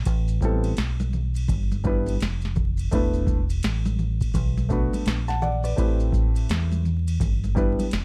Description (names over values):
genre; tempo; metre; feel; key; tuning
hip hop, jazz-hop; 84 BPM; 4/4; swing 62% on 16ths; A minor; A4 = 440 Hz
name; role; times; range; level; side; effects
deep dub fingered electric bass; bass; 0.0-8.0 s; E1 to E2; -27 LUFS; equal; none
booming analog drum machine; drums; 0.1-8.0 s; hi-hat, kick drum, ride cymbal, snare drum; -28 LUFS; equal; none
maracas and congas; percussion; 0.1-8.0 s; none; -36 LUFS; equal; none
dark grand piano; accompaniment; 0.4-7.8 s; G3 to A5; -29 LUFS; equal; none
room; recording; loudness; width
little or no reverb; dark, warm production, vinyl crackle; -24 LUFS; mono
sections
0.1-8.0 A section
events
none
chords
0.1 Am9; 1.5 G6; 2.9 E7sus4; 4.4 Bm7; 5.8 Am9; 7.2 G6